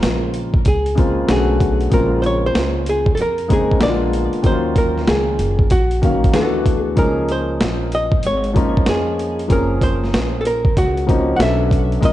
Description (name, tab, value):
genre	hip hop, jazz-hop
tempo	95 BPM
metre	4/4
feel	swing 66% on 16ths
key	unclear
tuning	A4 = 440 Hz
part	archtop guitar, miked and amplified	melody	0.0-12.1 s	Gb4 to Gb5	-21 LUFS	equal	tape echo
part	dark concert grand piano	accompaniment	0.0-12.1 s	Db3 to F5	-20 LUFS	left 2 dB	none
part	upright bass	bass	0.0-12.1 s	Gb1 to F2	-22 LUFS	equal	none
part	boom bap sampler-style drum kit	drums	0.0-12.1 s	hi-hat, kick drum, snare drum	-18 LUFS	equal	none
room	light reverb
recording	nothing above 11.0 kHz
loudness	-14 LUFS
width	side -14 dB against mid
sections	0.0-12.1 A section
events	none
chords	0.0 Gbmaj9#11 (rootless); 1.3 Cbm9; 1.9 Bbm9; 3.8 Bb7b9; 4.4 Ebm9; 6.3 D69; 7.0 Db69; 9.5 Gbmaj9#11; 11.4 Cbm9